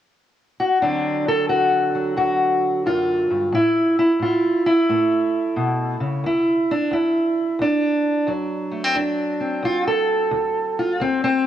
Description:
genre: acoustic country blues, solo or duo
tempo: 88 BPM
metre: 4/4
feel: swing 67% on 8ths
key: D mixolydian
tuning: A4 = 443 Hz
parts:
  - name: fingerpicked steel-string acoustic guitar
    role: solo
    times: 0.6-11.5 s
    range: D2 to A4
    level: -18 LUFS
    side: equal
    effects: cassette tape
room: light reverb, small room ambience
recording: home recording on cassette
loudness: -18 LUFS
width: side -10 dB against mid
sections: 0.8-6.2 A section; 6.2-11.5 B section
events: steel-string acoustic guitar solo 6.2-11.5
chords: 0.0 N.C.; 0.8 D7; 3.5 A5; 6.2 D7

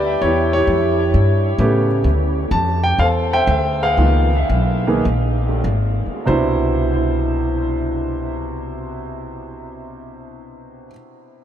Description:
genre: jazz piano trio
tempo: 91-130 BPM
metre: 4/4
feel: swing 68% on 8ths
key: C major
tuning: A4 = 440 Hz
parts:
  - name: warm concert grand piano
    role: melody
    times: 0.0-10.9 s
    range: B2 to A5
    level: -18 LUFS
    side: right 1 dB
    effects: diffuse ambient delay
  - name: upright bass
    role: bass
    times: 0.0-10.9 s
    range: Ab1 to A2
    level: -19 LUFS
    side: equal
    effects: none
room: moderate huge ambient reverb, RT60 7.4 s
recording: dreamy mix soaked in reverb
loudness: -15 LUFS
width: side -10 dB against mid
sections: 0.0-6.3 A section; 6.3-11.4 B section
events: slowing down 2.1-6.3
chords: 0.2 A9; 2.1 Dm9; 4.0 Db13; 6.3 Cmaj9

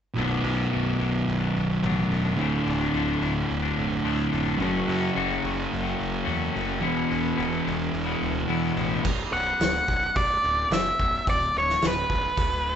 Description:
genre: quiet-loud alternative rock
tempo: 108 BPM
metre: 4/4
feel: straight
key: B dorian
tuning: A4 = 438 Hz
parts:
  - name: thick fuzz guitar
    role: riff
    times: 0.1-9.0 s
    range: B1 to F#3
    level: -25 LUFS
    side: right 1 dB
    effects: distortion
  - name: twangy electric guitar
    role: arpeggios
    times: 0.2-12.8 s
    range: B1 to F#4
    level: -32 LUFS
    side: left 8 dB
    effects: none
  - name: fuzz picked electric bass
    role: bass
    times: 0.2-12.8 s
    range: B0 to F#2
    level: -32 LUFS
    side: equal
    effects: overdrive
  - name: loose indie drum kit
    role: drums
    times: 9.0-12.5 s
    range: crash cymbal, hi-hat, kick drum, snare drum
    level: -27 LUFS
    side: equal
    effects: none
  - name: octave-fuzz lead guitar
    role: melody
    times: 9.3-12.8 s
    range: B4 to F#5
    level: -23 LUFS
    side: equal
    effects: distortion
room: light reverb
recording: band playing live in one room, nothing above 8.0 kHz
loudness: -23 LUFS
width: side -8 dB against mid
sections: 0.2-9.0 A section; 9.0-12.8 B section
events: none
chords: 0.2 Bm; 2.4 Dm; 4.6 F#m; 6.8 E; 9.0 Bm; 11.3 Dm

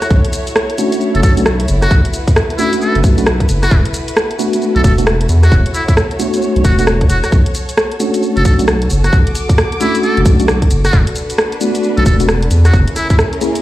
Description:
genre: UK garage, two-step garage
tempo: 133 BPM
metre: 4/4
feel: swing 62% on 16ths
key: B minor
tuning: A4 = 440 Hz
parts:
  - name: trumpet with metal mute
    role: melody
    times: 0.0-13.2 s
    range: E4 to A4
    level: -20 LUFS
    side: equal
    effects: ping-pong delay
  - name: muted studio violin section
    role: sustained chords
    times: 0.0-13.6 s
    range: C#4 to D6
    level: -23 LUFS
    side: equal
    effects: sidechain pumping
  - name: garage drum kit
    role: drums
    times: 0.0-13.6 s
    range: hi-hat, rim click, shaker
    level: -18 LUFS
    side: equal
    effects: none
  - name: saturated sub bass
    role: bass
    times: 0.1-12.8 s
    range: E1 to E2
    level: -12 LUFS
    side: equal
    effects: tube saturation
  - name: electronic kick drum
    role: drums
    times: 0.1-13.2 s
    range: none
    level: -11 LUFS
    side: equal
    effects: none
  - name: mellow tine electric piano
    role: stabs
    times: 0.8-13.6 s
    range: A3 to G#4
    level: -16 LUFS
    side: equal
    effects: fast stereo tremolo, ping-pong delay
room: light reverb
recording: played on a big sound system in a bare room, large studio reverb, vinyl crackle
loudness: -10 LUFS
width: side -15 dB against mid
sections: 0.0-13.6 A section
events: none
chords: 0.1 Bm9; 3.7 E7sus4; 7.3 Bm9; 10.9 E7sus4; 12.7 F#9

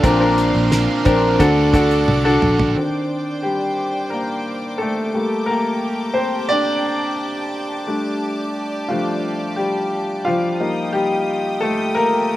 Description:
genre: piano-driven pop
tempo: 88 BPM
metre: 4/4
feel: straight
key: unclear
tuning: A4 = 439 Hz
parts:
  - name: warm baby grand piano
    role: accompaniment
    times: 0.0-12.4 s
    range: Bb2 to D5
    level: -18 LUFS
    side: left 1 dB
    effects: slapback echo
  - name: clear studio string section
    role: sustained chords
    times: 0.0-12.4 s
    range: G4 to Eb6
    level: -27 LUFS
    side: right 1 dB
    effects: none
  - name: biting overdriven guitar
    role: riff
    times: 0.0-2.8 s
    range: Bb2 to Bb4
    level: -25 LUFS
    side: right 6 dB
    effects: slapback echo
  - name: fingered electric bass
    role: bass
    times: 0.0-2.7 s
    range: Bb1 to D2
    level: -21 LUFS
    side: right 1 dB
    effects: none
  - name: damped 70s drum kit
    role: drums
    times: 0.0-2.8 s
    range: hi-hat, kick drum, snare drum, toms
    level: -19 LUFS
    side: right 1 dB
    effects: none
room: little or no reverb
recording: recorded outdoors, with no room sound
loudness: -17 LUFS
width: side -14 dB against mid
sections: 0.0-2.8 A section; 2.8-12.4 B section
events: drum fill 2.1-2.8; grand piano solo 2.8-12.4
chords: 0.0 Bbadd9; 1.4 D; 2.8 Cmadd9; 5.1 Gmadd9; 7.9 Dsus4; 10.6 Eb

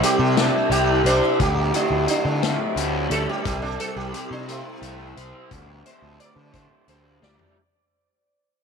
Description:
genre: psychedelic rock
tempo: 58 BPM (dotted quarters)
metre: 6/8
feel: straight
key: unclear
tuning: A4 = 435 Hz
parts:
  - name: sitar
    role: melody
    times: 0.0-7.6 s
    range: A3 to D5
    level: -26 LUFS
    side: right 4 dB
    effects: tape echo
  - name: tonewheel organ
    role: sustained chords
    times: 0.0-7.5 s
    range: G4 to E6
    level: -35 LUFS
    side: right 10 dB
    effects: slow rotary speaker
  - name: raw garage guitar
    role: riff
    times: 0.0-7.6 s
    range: D2 to C5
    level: -24 LUFS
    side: left 1 dB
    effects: overdrive, flanger
  - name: vintage drum kit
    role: drums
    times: 0.0-7.5 s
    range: hi-hat, kick drum, snare drum, toms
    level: -27 LUFS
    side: left 6 dB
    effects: none
  - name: fuzz picked electric bass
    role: bass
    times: 0.2-7.4 s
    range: C2 to D3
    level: -26 LUFS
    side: equal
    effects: overdrive
room: light reverb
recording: 1960s-style stereo with parts hard left and right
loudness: -19 LUFS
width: side -6 dB against mid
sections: 0.0-7.6 A section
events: fade-out 0.0-7.6; sitar solo 0.0-7.6; drum fill 7.2-7.6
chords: 0.0 C; 1.4 Dsus4; 3.4 C; 5.5 Dsus4

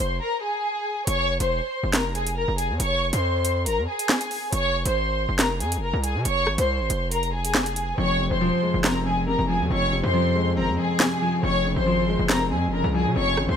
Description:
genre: hip hop, drill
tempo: 139 BPM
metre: 4/4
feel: half-time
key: F minor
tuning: A4 = 442 Hz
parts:
  - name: dark studio violin section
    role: melody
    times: 0.0-13.6 s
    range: Ab4 to Db6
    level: -24 LUFS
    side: left 1 dB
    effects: none
  - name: distorted 808-style bass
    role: bass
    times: 0.0-13.6 s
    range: E1 to C3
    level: -26 LUFS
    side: equal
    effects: distortion
  - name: drill drum kit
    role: drums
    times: 1.1-13.5 s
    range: handclaps, hi-hat, rim click, snare drum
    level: -24 LUFS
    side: right 1 dB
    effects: overdrive
  - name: clear concert grand piano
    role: accompaniment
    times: 8.0-13.6 s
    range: F2 to C4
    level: -24 LUFS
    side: left 1 dB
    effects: none
room: studio reverb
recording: none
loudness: -21 LUFS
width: side -8 dB against mid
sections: 0.0-13.6 A section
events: break 0.2-1.1; hi-hats muted 8.0-13.6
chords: 0.0 Dbmaj7/F (rootless); 1.1 Fm; 4.5 Dbmaj7/F; 8.0 Fm; 11.4 Dbmaj7/F

